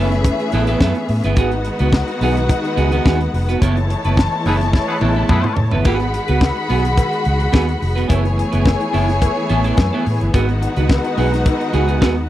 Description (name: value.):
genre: disco.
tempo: 107 BPM.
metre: 4/4.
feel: straight.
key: F# dorian.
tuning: A4 = 441 Hz.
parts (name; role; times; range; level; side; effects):
dark studio string section; second line; 0.0-12.3 s; C#4 to B5; -22 LUFS; left 2 dB; tape echo.
semi-hollow electric guitar; accompaniment; 0.0-12.2 s; B3 to B4; -22 LUFS; right 5 dB; none.
bright studio string section; sustained chords; 0.0-12.3 s; D#3 to G#4; -24 LUFS; left 2 dB; none.
vintage muted fingered electric bass; bass; 0.0-12.3 s; E#1 to A2; -18 LUFS; equal; none.
tight funk drum kit; drums; 0.1-12.2 s; crash cymbal, hi-hat, kick drum, snare drum, toms; -16 LUFS; equal; none.
clear horn section; stabs; 4.5-5.5 s; B3 to B4; -24 LUFS; left 2 dB; none.
cowbell; percussion; 5.9-12.2 s; none; -29 LUFS; left 11 dB; none.
room: small room reverb.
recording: dry, close 1970s-style studio recording.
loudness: -14 LUFS.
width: side -13 dB against mid.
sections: 0.0-12.3 A section.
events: band accent 3.6-5.9; drum fill 4.7-5.9.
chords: 0.0 F#m11; 1.4 G#m7; 3.6 F#m11; 5.9 G#m7; 8.1 F#m11; 10.3 G#m7.